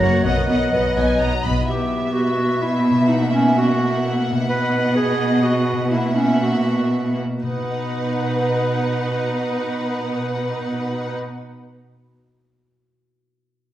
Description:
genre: classical, dramatic, fast romantic movement for symphony orchestra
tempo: 126 BPM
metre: 3/4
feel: straight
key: B major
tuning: A4 = 440 Hz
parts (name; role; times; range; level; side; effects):
- rich symphonic violin section; melody; 0.0-11.1 s; E5 to B5; -30 LUFS; left 2 dB; none
- clear oboe; second line; 0.0-1.4 s; F#5 to A#5; -28 LUFS; right 1 dB; none
- flute section; second line; 0.0-1.4 s; C#5 to D#5; -30 LUFS; right 1 dB; none
- rich chamber violin section; second line; 0.0-11.1 s; B4 to E5; -29 LUFS; equal; none
- warm clarinet; second line; 0.0-11.1 s; C#4 to D#5; -24 LUFS; right 1 dB; none
- clear symphonic viola section; accompaniment; 0.0-11.1 s; A#3 to D#4; -27 LUFS; equal; none
- mellow bassoon; accompaniment; 0.0-1.4 s; F#3; -30 LUFS; equal; none
- mellow French horn section; sustained chords; 0.0-1.2 s; F#4 to B4; -25 LUFS; left 2 dB; none
- concert harp; arpeggios; 0.0-11.7 s; F#2 to D#5; -27 LUFS; left 2 dB; none
- rich symphonic double bass section; bass; 0.0-1.5 s; F#1 to B1; -24 LUFS; right 1 dB; none
- warm symphonic cello section; bass; 0.0-11.1 s; F#2 to B2; -22 LUFS; right 1 dB; none
room: wet recital hall reverb, RT60 1.4 s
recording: heard from further back in the room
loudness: -18 LUFS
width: side -12 dB against mid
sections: 0.0-1.7 A section; 1.7-7.4 B section; 7.4-10.4 C section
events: slowing down 3.8-7.4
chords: 0.2 B; 1.7 Em/B; 3.1 F#7/B; 7.4 B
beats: | 0.24 0.72 1.20 | 1.67 2.15 2.62 | 3.08 3.56 4.03 | 4.49 4.97 5.44 | 5.92 6.42 6.92 | 7.43 7.92 8.41 | 8.90 9.39 9.88

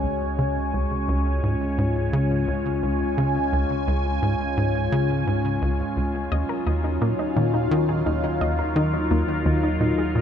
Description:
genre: ambient, sequencer-driven space music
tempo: 86 BPM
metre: 4/4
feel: straight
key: unclear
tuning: A4 = 440 Hz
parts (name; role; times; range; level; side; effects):
- phased analog pad; sustained chords; 0.0-10.2 s; Gb3 to Ab5; -24 LUFS; left 1 dB; phaser, chorus
- tight sequencer bass; riff; 0.0-10.2 s; Db2 to Eb3; -24 LUFS; equal; tape echo
- warm sub bass; bass; 0.0-10.2 s; Db2 to Eb2; -31 LUFS; equal; none
- wide unison pluck; arpeggios; 6.3-10.2 s; Eb3 to Eb5; -28 LUFS; moving between left 5 dB and right 1 dB; auto-pan, tape echo
room: moderate huge ambient reverb, RT60 7.2 s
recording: dark, warm production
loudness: -21 LUFS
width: side -8 dB against mid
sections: 0.0-10.2 A section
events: none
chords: 0.0 Dbsus4; 6.3 Ebmadd9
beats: 0.04 | 0.74 1.44 2.13 2.83 | 3.53 4.22 4.92 5.62 | 6.32 7.02 7.71 8.41 | 9.11 9.81

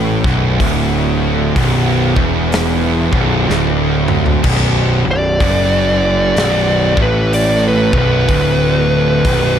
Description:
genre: stoner and doom metal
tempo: 62 BPM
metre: 4/4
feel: swing 63% on 8ths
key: B minor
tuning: A4 = 440 Hz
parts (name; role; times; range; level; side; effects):
- thick fuzz guitar; riff; 0.0-9.6 s; B1 to A2; -20 LUFS; left 8 dB; distortion
- thick fuzz guitar; riff; 0.0-9.6 s; B1 to A2; -19 LUFS; right 8 dB; distortion
- tight distorted guitar; riff; 0.0-9.6 s; B1 to A2; -20 LUFS; right 1 dB; distortion
- fuzz picked electric bass; bass; 0.0-9.6 s; B0 to A1; -17 LUFS; equal; overdrive
- big rock drum kit; drums; 0.2-9.5 s; crash cymbal, hi-hat, kick drum, snare drum, toms; -20 LUFS; equal; none
- fuzz lead guitar; melody; 5.1-9.6 s; B4 to D5; -16 LUFS; equal; distortion, slapback echo
room: light reverb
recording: none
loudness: -11 LUFS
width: side -9 dB against mid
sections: 0.0-4.4 A section; 4.4-9.6 B section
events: drum fill 3.5-4.4; lead electric guitar solo 4.4-9.6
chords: 0.0 Bm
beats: | 0.60 1.56 2.52 3.48 | 4.45 5.41 6.37 7.33 | 8.29 9.25

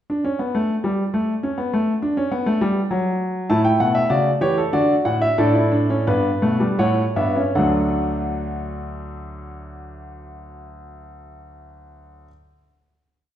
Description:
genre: classical, baroque-style 4-part fugue for grand piano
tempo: 75-102 BPM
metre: 3/4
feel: straight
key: D major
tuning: A4 = 440 Hz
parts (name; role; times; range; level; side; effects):
- warm grand piano; solo; 0.1-12.3 s; D2 to A5; -19 LUFS; equal; none
room: wet recital hall reverb, RT60 1.5 s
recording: recorded in a church or concert hall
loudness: -18 LUFS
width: side -11 dB against mid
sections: 0.0-7.5 exposition; 7.5-12.3 final chord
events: slowing down 2.6-7.5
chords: 0.0 N.C.; 3.5 A7; 4.7 D; 5.4 A7sus4; 6.8 A7; 7.5 D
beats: 0.54 1.13 | 1.72 2.31 2.90 | 3.49 4.10 4.72 | 5.38 6.06 6.78 | 7.55 8.35 9.15 | 9.94 10.74 11.54

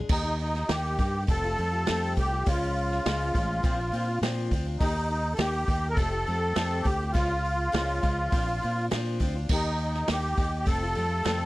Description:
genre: folk rock and heartland rock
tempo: 102 BPM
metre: 4/4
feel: straight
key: unclear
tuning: A4 = 440 Hz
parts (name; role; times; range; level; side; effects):
- picked old ladder-braced acoustic guitar; accompaniment; 0.0-11.5 s; F2 to G4; -35 LUFS; left 4 dB; none
- musette accordion; melody; 0.1-11.5 s; Eb4 to Bb4; -29 LUFS; equal; none
- fingered electric bass; bass; 0.1-11.5 s; F1 to Bb2; -30 LUFS; equal; none
- vintage drum kit; drums; 0.1-11.4 s; crash cymbal, hi-hat, kick drum, snare drum; -30 LUFS; equal; none
room: little or no reverb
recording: dry, close 1970s-style studio recording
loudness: -25 LUFS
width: side -18 dB against mid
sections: 0.1-11.5 A section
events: none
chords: 0.1 Eb; 1.3 Fadd9; 2.5 Db; 3.6 Bbadd9; 4.8 Eb; 6.0 Fadd9; 7.2 Db; 8.3 Bbadd9; 9.5 Eb; 10.7 Fadd9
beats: | 0.10 0.69 1.28 1.87 | 2.46 3.04 3.63 4.22 | 4.81 5.39 5.98 6.57 | 7.15 7.74 8.33 8.91 | 9.50 10.09 10.67 11.26

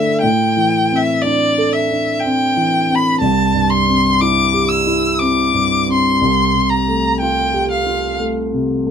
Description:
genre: classical, impressionist duo for violin and grand piano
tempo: 60 BPM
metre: 3/4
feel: rubato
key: C mixolydian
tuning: A4 = 443 Hz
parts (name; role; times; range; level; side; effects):
- rich violin; melody; 0.0-8.2 s; D5 to E6; -16 LUFS; left 1 dB; none
- dark concert grand piano; accompaniment; 0.0-8.9 s; C2 to A4; -16 LUFS; equal; none
room: light reverb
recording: minimal, uncompressed stereo recording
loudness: -13 LUFS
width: side -7 dB against mid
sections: 0.0-8.9 A section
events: none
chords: 0.2 Amadd11; 3.2 C; 6.2 G9sus4/C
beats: | 0.22 1.22 2.21 | 3.19 4.19 5.18 | 6.19 7.20 8.18

